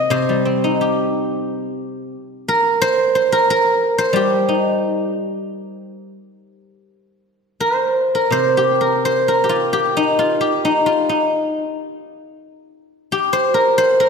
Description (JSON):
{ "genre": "chinese traditional, Chinese solo plucked strings", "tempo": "88 BPM", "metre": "4/4", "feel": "rubato", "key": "unclear", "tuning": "A4 = 440 Hz", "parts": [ { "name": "guzheng", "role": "solo", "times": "0.0-14.1 s", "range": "C3 to F5", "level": "-15 LUFS", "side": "equal", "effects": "none" } ], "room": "wet lush hall reverb, RT60 2.0 s", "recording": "dreamy mix soaked in reverb", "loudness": "-15 LUFS", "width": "side -5 dB against mid", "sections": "0.0-8.3 A section; 8.3-14.1 B section", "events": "none", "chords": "none", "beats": "| 0.12 0.80 1.48 2.15 | 2.81 3.47 4.14 4.80 | 5.47 6.16 6.86 7.58 | 8.31 9.02 9.71 10.40 | 11.09 11.77 12.44 13.09 | 13.76" }